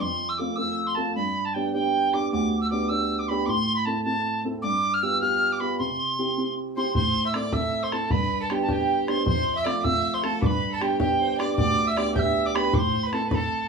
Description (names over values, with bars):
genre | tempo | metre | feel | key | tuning
celtic folk, Celtic jig | 104 BPM (dotted quarters) | 6/8 | straight | unclear | A4 = 442 Hz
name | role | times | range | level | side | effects
tin whistle | melody | 0.0-13.7 s | G5 to G6 | -26 LUFS | right 1 dB | none
dark baby grand piano | accompaniment | 0.0-13.7 s | D2 to A4 | -26 LUFS | right 1 dB | none
rich fiddle | second line | 6.8-13.7 s | G4 to E5 | -30 LUFS | right 1 dB | none
bodhran | percussion | 7.0-13.4 s | none | -27 LUFS | equal | none
room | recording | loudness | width
wet small room reverb, RT60 0.5 s | band playing live in one room, small room ambience | -22 LUFS | side -5 dB against mid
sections
0.0-7.0 A section; 7.0-13.7 A section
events
none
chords
0.0 F; 1.2 G; 3.5 Am; 4.6 G7; 5.8 C; 7.0 Am; 8.1 G; 9.3 F; 10.4 G; 12.7 Am